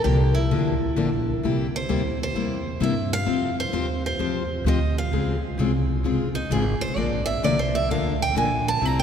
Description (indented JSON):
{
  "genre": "acoustic string swing (jazz manouche)",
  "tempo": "130 BPM",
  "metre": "4/4",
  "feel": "swing 65% on 8ths",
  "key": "unclear",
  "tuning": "A4 = 440 Hz",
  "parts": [
    { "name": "picked steel-string acoustic guitar", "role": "melody", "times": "0.0-9.0 s", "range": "Eb4 to Bb5", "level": "-27 LUFS", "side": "right 2 dB", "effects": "none" },
    { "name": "picked steel-string acoustic guitar", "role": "accompaniment", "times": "0.0-9.0 s", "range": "C3 to C5", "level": "-25 LUFS", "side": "left 4 dB", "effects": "none" },
    { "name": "upright bass", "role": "bass", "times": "0.0-9.0 s", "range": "F1 to G2", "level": "-25 LUFS", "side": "right 1 dB", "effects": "none" }
  ],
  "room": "wet cathedral reverb, RT60 4.8 s",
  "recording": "recorded in a church or concert hall",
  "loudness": "-21 LUFS",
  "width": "side -8 dB against mid",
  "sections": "0.0-9.0 A section",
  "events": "steel-string acoustic guitar solo 0.0-9.0",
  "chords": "0.0 Gm7; 1.4 C7; 3.3 Fsus2; 5.1 Dbmaj7; 7.0 Bb"
}